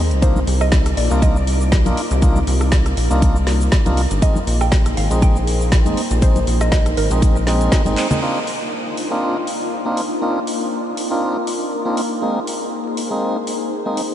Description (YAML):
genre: deep house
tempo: 120 BPM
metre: 4/4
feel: swing 55% on 16ths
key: C minor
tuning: A4 = 439 Hz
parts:
  - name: soft string machine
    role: sustained chords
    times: 0.0-14.1 s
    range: Bb3 to D6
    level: -25 LUFS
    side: left 1 dB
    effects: ensemble chorus, sidechain pumping
  - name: rubbery square bass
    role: bass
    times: 0.0-8.0 s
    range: G1 to Eb2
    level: -18 LUFS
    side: equal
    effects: sidechain pumping
  - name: deep house drum kit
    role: drums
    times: 0.1-14.1 s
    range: handclaps, hi-hat, rim click, shaker, snare drum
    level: -26 LUFS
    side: equal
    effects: studio reverb
  - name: mallet-like synth pluck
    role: melody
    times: 0.2-7.9 s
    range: Bb4 to G5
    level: -28 LUFS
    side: right 1 dB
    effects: chorus, phaser, vintage 12-bit sampler grit, analog delay
  - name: tonewheel organ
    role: stabs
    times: 0.2-14.0 s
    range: Ab3 to F4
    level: -23 LUFS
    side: equal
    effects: overdrive, sidechain pumping, analog delay
  - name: electronic kick drum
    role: drums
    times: 0.2-7.8 s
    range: none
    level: -15 LUFS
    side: equal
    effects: studio reverb
  - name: congas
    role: percussion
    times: 0.4-8.2 s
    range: none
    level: -28 LUFS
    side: left 2 dB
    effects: none
room: moderate huge ambient reverb, RT60 8.3 s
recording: dreamy mix soaked in reverb, vinyl crackle, nothing above 10.7 kHz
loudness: -15 LUFS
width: side -11 dB against mid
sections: 0.0-8.2 A section; 8.2-14.1 B section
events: drum fill 8.0; band accent 8.0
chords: 0.2 Cm11; 4.2 Bb9sus4; 8.2 Cm11; 12.2 Bb9sus4